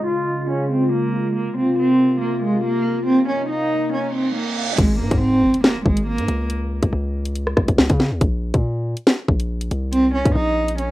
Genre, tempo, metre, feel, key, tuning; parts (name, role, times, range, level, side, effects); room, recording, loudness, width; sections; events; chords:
hip hop, drill; 140 BPM; 4/4; half-time; A4 = 440 Hz
warm cello; melody; 0.0-6.5, 9.9-10.9 s; Ab3 to F4; -20 LUFS; right 1 dB; low-pass filter
hollow soft pad; sustained chords; 0.0-4.8 s; C3 to F4; -23 LUFS; left 1 dB; chorus, low-pass filter
reverse cymbal and impact; sound effects; 4.1-6.5 s; -28 LUFS; right 2 dB
distorted 808-style bass; bass; 4.8-10.9 s; G1 to Db3; -22 LUFS; equal; distortion
drill drum kit; drums; 4.8-10.9 s; crash cymbal, hi-hat, kick drum, rim click, snare drum; -17 LUFS; equal
wet studio reverb, RT60 0.5 s; rough home demo mix; -17 LUFS; side -16 dB against mid
0.0-4.8 A section; 4.8-10.9 B section
filter sweep 0.0-4.8; reverse cymbal 4.1-4.8; impact 4.8-6.5
0.0 Db; 1.4 Bbsus2; 3.1 Cm7; 4.8 Absus2; 6.5 N.C.; 8.2 Bbsus2; 9.9 Cm7